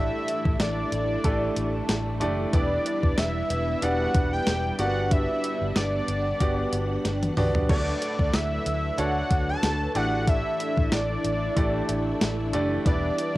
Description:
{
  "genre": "1980s-style pop",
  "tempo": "93 BPM",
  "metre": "4/4",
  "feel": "swing 55% on 16ths",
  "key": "unclear",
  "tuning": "A4 = 438 Hz",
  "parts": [
    { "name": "fat analog lead", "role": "melody", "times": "0.0-13.4 s", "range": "D5 to A5", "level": "-29 LUFS", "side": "equal", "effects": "cassette tape, analog delay" },
    { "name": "clear baby grand piano", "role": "accompaniment", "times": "0.0-13.4 s", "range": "A3 to D5", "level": "-30 LUFS", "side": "right 1 dB", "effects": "cassette tape" },
    { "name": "string machine, full ensemble", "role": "sustained chords", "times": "0.0-13.4 s", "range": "E3 to F#5", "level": "-33 LUFS", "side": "equal", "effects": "ensemble chorus, cassette tape" },
    { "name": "mellow synth brass", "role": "stabs", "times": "0.0-13.4 s", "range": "E3 to B4", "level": "-36 LUFS", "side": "left 1 dB", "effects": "chorus, phaser, cassette tape" },
    { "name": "vintage muted fingered electric bass", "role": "bass", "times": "0.0-13.1 s", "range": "E1 to D2", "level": "-30 LUFS", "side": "equal", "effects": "none" },
    { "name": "clean 12-bit digital drum machine", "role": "drums", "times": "0.3-13.3 s", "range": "crash cymbal, hi-hat, kick drum, snare drum, tambourine, toms", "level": "-25 LUFS", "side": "equal", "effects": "overdrive, cassette tape" }
  ],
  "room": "moderate spring reverb, RT60 1.9 s",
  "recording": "home recording on cassette",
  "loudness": "-23 LUFS",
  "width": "side -17 dB against mid",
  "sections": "0.0-13.4 A section",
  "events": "drum fill 7.0-7.7",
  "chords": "0.0 A7sus4; 2.5 Em7; 4.8 Gmaj7; 7.7 Dmaj7; 10.0 A7sus4; 12.9 Em7"
}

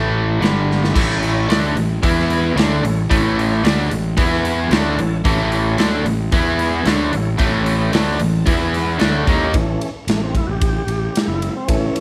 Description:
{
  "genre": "blues rock power trio and southern rock",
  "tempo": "112 BPM",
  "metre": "4/4",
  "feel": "straight",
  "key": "A mixolydian",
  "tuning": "A4 = 442 Hz",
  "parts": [
    { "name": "crunchy overdriven guitar", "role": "riff", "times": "0.0-9.5 s", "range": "G2 to E4", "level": "-20 LUFS", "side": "equal", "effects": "none" },
    { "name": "fuzz fingered electric bass", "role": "bass", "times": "0.0-11.9 s", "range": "F#1 to E2", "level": "-24 LUFS", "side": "equal", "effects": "overdrive" },
    { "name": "tonewheel organ", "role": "sustained chords", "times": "0.4-12.0 s", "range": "E3 to A5", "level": "-30 LUFS", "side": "equal", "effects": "slow rotary speaker, overdrive" },
    { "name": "big rock drum kit", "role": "drums", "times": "0.4-12.0 s", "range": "crash cymbal, hi-hat, kick drum, ride cymbal, snare drum", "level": "-23 LUFS", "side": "equal", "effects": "none" }
  ],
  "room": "light reverb, small room ambience",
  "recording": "none",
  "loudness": "-18 LUFS",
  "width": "mono",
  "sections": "1.0-9.5 A section; 9.5-12.0 B section",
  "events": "drum fill 0.7; tonewheel organ fill 4.2-5.3, 7.9-9.5; tonewheel organ solo 9.5-12.0",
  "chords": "0.4 G5; 1.0 A; 2.0 E5; 2.6 A; 4.2 E5; 4.7 A; 6.3 E5; 6.9 A; 8.5 E5; 9.0 A"
}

